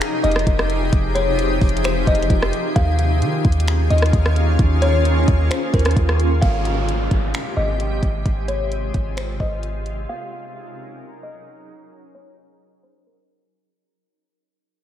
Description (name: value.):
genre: hip hop, atmospheric cloud-rap.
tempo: 131 BPM.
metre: 4/4.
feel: half-time.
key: Ab major.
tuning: A4 = 440 Hz.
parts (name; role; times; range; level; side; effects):
buzzing kalimba; melody; 0.0-13.7 s; Bb4 to F5; -26 LUFS; left 3 dB; low-pass filter, ping-pong delay.
shimmering ambient pad; sustained chords; 0.0-13.7 s; C3 to Bb4; -24 LUFS; equal; chorus, built-in reverb, sidechain pumping, low-pass filter.
smooth R&B drum kit; drums; 0.0-10.0 s; finger snaps, hi-hat, kick drum, rim click; -20 LUFS; equal; none.
warm 808-style bass; bass; 0.2-10.1 s; F1 to Eb3; -20 LUFS; equal; none.
downlifter; sound effects; 6.4-10.1 s; none; -31 LUFS; left 1 dB; none.
room: light reverb.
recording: none.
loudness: -16 LUFS.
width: side -10 dB against mid.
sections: 0.0-6.4 A section; 6.4-13.8 B section.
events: fade-out 6.4-13.8; filter sweep 6.4-13.8.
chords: 0.0 Fm7; 2.8 Eb7sus4; 6.4 Abmaj7; 10.1 Gb69.